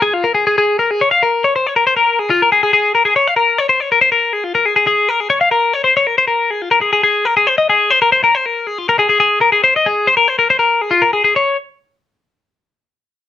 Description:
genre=rock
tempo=139 BPM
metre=5/4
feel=straight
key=unclear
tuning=A4 = 441 Hz
part: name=twelve-string electric guitar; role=solo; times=0.0-11.6 s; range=F4 to F5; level=-11 LUFS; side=left 3 dB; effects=none
room=moderate studio reverb, RT60 0.5 s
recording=none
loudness=-11 LUFS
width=side -11 dB against mid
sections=0.0-11.4 A section; 11.4-13.3 B section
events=none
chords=none

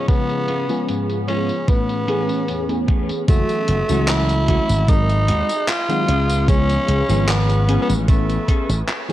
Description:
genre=vaporwave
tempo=75 BPM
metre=4/4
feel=straight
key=F# minor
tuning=A4 = 435 Hz
part: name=growling tenor saxophone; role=melody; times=0.0-8.8 s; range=A3 to E#4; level=-23 LUFS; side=equal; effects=tape echo
part: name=mellow FM electric piano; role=accompaniment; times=0.0-9.1 s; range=D#3 to B4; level=-24 LUFS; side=left 1 dB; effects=ensemble chorus
part: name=soft string machine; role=sustained chords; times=0.0-9.1 s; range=A2 to C#6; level=-32 LUFS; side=right 2 dB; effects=none
part: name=clean electric guitar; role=riff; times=0.0-8.7 s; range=E2 to A4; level=-28 LUFS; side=left 2 dB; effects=wide subtle chorus, vintage 12-bit sampler grit, tape echo
part: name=electronic kick drum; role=drums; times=0.1-8.7 s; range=none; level=-16 LUFS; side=equal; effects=none
part: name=gated 80s digital drum machine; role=drums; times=0.1-9.1 s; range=handclaps, hi-hat, tambourine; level=-27 LUFS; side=equal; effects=gated reverb, low-pass filter on hats, low-pass filter on perc, low-pass filter on snare, low-pass filter on room
part: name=slap bass with an envelope filter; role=bass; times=3.3-8.8 s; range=F#1 to D#2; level=-18 LUFS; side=equal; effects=none
room=digital ambience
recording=cassette tape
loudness=-16 LUFS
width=side -14 dB against mid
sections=0.0-3.3 A section; 3.3-9.1 B section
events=none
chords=0.0 C#7; 1.7 Amaj9; 3.3 F#m7; 4.9 G#7; 6.1 C#7; 8.1 Amaj9

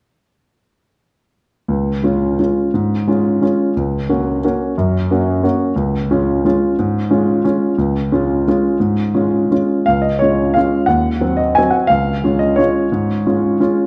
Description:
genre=classical, piano waltz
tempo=154-188 BPM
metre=3/4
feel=rubato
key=Db major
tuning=A4 = 440 Hz
part: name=clear grand piano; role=solo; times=1.7-13.9 s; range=Db2 to Ab5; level=-16 LUFS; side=equal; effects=none
room=wet recital hall reverb, RT60 1.6 s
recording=dark, warm production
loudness=-16 LUFS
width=mono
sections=1.7-9.9 A section; 9.9-13.9 B section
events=none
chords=1.7 Db; 3.8 Gb/Db; 5.8 Db; 10.9 Cdim/Eb; 11.9 Db

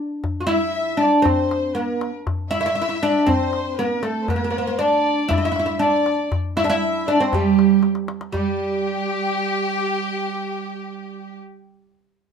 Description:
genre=Arabic maqam ensemble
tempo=118 BPM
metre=4/4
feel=straight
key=G maqam rast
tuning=A4 = 439 Hz
part: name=darbuka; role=percussion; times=0.2-8.6 s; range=none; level=-27 LUFS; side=left 2 dB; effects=none
part: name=oud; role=melody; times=0.4-11.4 s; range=G3 to F#4-50c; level=-20 LUFS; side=right 2 dB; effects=none
part: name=dark violin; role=second line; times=0.5-11.4 s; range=G4 to E5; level=-28 LUFS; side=left 4 dB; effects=none
part: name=warm symphonic violin section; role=second line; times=0.5-11.4 s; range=G4 to E5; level=-29 LUFS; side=left 2 dB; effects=none
room=moderate studio reverb, RT60 0.5 s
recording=minimal, uncompressed stereo recording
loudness=-18 LUFS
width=side -6 dB against mid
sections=0.0-8.3 A section; 8.3-12.3 B section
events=drum fill 7.8-8.3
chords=none

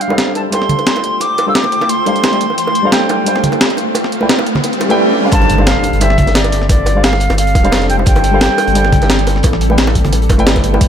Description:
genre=liquid drum and bass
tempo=175 BPM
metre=4/4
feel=swing 53% on 16ths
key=unclear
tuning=A4 = 443 Hz
part: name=reedy silver concert flute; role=melody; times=0.0-9.4 s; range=D5 to E6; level=-17 LUFS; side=equal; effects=ping-pong delay
part: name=shimmering ambient pad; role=sustained chords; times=0.0-10.9 s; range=E3 to G5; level=-21 LUFS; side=equal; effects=chorus, built-in reverb, sidechain pumping
part: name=breakbeat sampler-style drum kit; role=drums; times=0.0-10.9 s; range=hi-hat, snare drum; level=-16 LUFS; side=equal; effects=none
part: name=riser, swell and impact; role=sound effects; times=2.5-6.7 s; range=none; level=-20 LUFS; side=right 1 dB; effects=none
part: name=dark concert grand piano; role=accompaniment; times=0.1-10.9 s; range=G3 to G5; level=-18 LUFS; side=equal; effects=dub echo
part: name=bongos and congas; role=percussion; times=0.1-10.8 s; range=none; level=-22 LUFS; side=right 2 dB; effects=none
part: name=warm sub bass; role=bass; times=5.3-10.9 s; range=D1 to A1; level=-15 LUFS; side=equal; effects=tube saturation
part: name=crunchy breakbeat drum kit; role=drums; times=5.3-10.9 s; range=hi-hat, snare drum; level=-24 LUFS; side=equal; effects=high-pass filter on hats, high-pass filter on snare, high-pass filter on room
part: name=electronic kick drum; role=drums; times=5.3-10.9 s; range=none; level=-13 LUFS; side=equal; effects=none
room=light reverb, studio reverb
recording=none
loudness=-10 LUFS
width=side -8 dB against mid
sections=0.0-5.3 A section; 5.3-10.9 B section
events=build-up 0.0-5.3; riser 2.5-5.3; swell 4.6-5.3; drop 5.3-10.9; impact 5.3-6.7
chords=0.0 G9sus4; 4.0 A9sus4; 5.3 G9sus4; 9.4 A9sus4

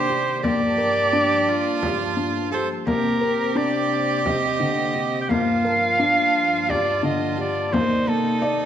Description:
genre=contemporary instrumental, chamber music in an uneven meter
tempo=173 BPM (eighths)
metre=7/8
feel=straight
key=C dorian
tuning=A4 = 440 Hz
part: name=warm soprano saxophone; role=melody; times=0.0-8.7 s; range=A4 to G5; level=-22 LUFS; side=right 1 dB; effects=none
part: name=clear cello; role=second line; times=0.0-8.7 s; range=Eb4 to A4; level=-26 LUFS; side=right 6 dB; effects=none
part: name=hollow soft pad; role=sustained chords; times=0.0-8.7 s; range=G2 to A5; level=-30 LUFS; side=equal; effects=chorus
part: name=felt-muted upright piano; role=arpeggios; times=0.0-8.7 s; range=D3 to D5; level=-24 LUFS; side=left 2 dB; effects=none
part: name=frame drum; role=percussion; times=0.4-8.6 s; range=none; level=-32 LUFS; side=left 2 dB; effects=none
room=wet scoring stage reverb, RT60 1.5 s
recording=none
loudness=-19 LUFS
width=side -10 dB against mid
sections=0.0-8.7 A section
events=none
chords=0.4 Gm9; 2.9 Cm9; 5.3 Gm9; 7.7 Cm9

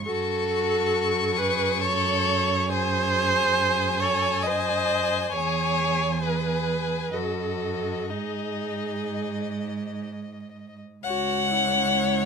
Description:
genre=classical, slow romantic movement for string quartet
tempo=60-70 BPM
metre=3/4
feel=rubato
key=C# minor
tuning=A4 = 440 Hz
part: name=rich violin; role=second line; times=0.0-12.3 s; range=C#5 to C#6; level=-32 LUFS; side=left 8 dB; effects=none
part: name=rich violin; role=melody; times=0.1-12.3 s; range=D#4 to F#5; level=-28 LUFS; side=left 8 dB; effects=none
part: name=warm viola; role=accompaniment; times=0.1-12.3 s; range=E4 to D#5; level=-26 LUFS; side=right 3 dB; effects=none
part: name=warm cello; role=bass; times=0.1-12.3 s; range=C#2 to G#2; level=-30 LUFS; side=right 4 dB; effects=none
room=light reverb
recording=minimal, uncompressed stereo recording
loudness=-22 LUFS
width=side -6 dB against mid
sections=0.0-11.1 A section; 11.1-12.3 B section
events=none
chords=0.1 F#m; 2.7 G#7/F#; 5.3 C#m/E; 7.1 D#dim/F#; 8.1 G#5; 11.1 C#m

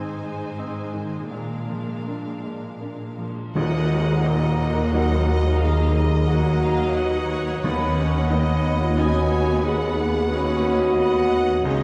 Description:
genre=cinematic, emotional film score for orchestra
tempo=78-91 BPM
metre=3/4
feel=rubato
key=Eb minor from 3.6 s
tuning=A4 = 439 Hz
part: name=clear symphonic violin section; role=second line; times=0.0-11.8 s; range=Bb4 to Ab5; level=-39 LUFS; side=equal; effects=none
part: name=bright baby grand piano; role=accompaniment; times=0.0-11.8 s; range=Db2 to Eb4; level=-34 LUFS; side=equal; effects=none
part: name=rich studio viola section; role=accompaniment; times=0.0-11.8 s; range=Gb3 to Eb4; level=-34 LUFS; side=equal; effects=none
part: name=concert harp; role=arpeggios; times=0.0-11.8 s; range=Ab2 to B5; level=-32 LUFS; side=equal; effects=none
part: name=warm symphonic cello section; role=bass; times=0.0-11.8 s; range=Eb2 to Db3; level=-30 LUFS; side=equal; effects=none
part: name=mellow large flute ensemble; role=second line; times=3.5-11.8 s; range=Ab5 to B5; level=-36 LUFS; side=equal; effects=none
part: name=rich symphonic violin section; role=melody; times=3.6-11.8 s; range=Eb5 to Ab5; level=-36 LUFS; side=equal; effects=none
part: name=clear oboe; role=second line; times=3.6-11.8 s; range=Eb5 to D#5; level=-35 LUFS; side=equal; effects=none
part: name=warm clarinet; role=second line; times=3.6-11.8 s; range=Bb4 to Db5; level=-37 LUFS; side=equal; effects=none
part: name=rich symphonic double bass section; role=bass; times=3.6-11.8 s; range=Db2 to Eb2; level=-28 LUFS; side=equal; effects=none
part: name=tam-tam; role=percussion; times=3.6-6.3 s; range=none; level=-36 LUFS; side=equal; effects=none
part: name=timpani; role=percussion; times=3.6-8.6 s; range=Eb3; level=-32 LUFS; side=equal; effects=none
part: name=mellow French horn section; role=sustained chords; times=4.3-11.8 s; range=Eb4 to Ab4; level=-26 LUFS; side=equal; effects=none
room=wet scoring stage reverb, RT60 1.9 s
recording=dark, warm production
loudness=-22 LUFS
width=mono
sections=0.0-3.6 A section; 3.6-11.8 B section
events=band accent 3.6-4.3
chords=0.0 Ab; 1.3 Bb7; 3.6 Ebm; 7.6 Badd9/D#

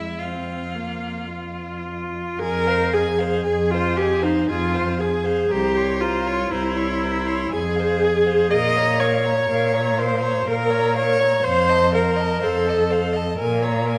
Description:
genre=classical, slow romantic movement for string quartet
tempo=54-62 BPM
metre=3/4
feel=rubato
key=F minor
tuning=A4 = 440 Hz
part: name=rich violin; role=melody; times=0.0-14.0 s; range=E5 to C6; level=-33 LUFS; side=equal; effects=none
part: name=rich violin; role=second line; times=0.0-14.0 s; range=E4 to Eb5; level=-31 LUFS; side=equal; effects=none
part: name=clear viola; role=accompaniment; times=0.0-13.4 s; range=Bb3 to Eb5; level=-23 LUFS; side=equal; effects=none
part: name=rich cello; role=bass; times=0.0-14.0 s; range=C2 to Bb2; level=-27 LUFS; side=equal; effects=none
room=wet recital hall reverb, RT60 1.4 s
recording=none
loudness=-21 LUFS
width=mono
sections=0.0-2.4 A section; 2.4-14.0 A section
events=none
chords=0.0 F5; 2.4 Fm; 5.5 C7b9; 7.5 Fm; 8.5 Bbm; 11.4 F7; 13.4 Bbm7

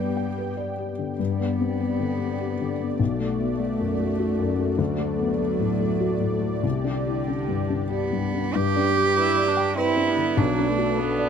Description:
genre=neoclassical piano and strings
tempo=91-101 BPM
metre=3/4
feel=rubato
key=G major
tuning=A4 = 438 Hz
part: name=warm cello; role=second line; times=0.0-11.3 s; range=D3 to G4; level=-27 LUFS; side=right 7 dB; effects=none
part: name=felt-muted upright piano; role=accompaniment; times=0.0-11.3 s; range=B1 to G5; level=-24 LUFS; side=left 4 dB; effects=none
part: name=warm analog pad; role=sustained chords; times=0.0-11.3 s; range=A3 to G5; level=-31 LUFS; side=right 1 dB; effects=chorus
part: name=warm viola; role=accompaniment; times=9.2-11.3 s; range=F#3 to E4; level=-28 LUFS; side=right 4 dB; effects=none
room=little or no reverb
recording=close, detailed microphones, lossy compression artefacts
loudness=-22 LUFS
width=side -7 dB against mid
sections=0.0-1.2 A section; 1.2-8.6 B section; 8.6-11.3 C section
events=none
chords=0.0 G; 3.0 Bm7; 4.8 D; 6.6 Csus2; 8.6 G; 10.4 Bm7

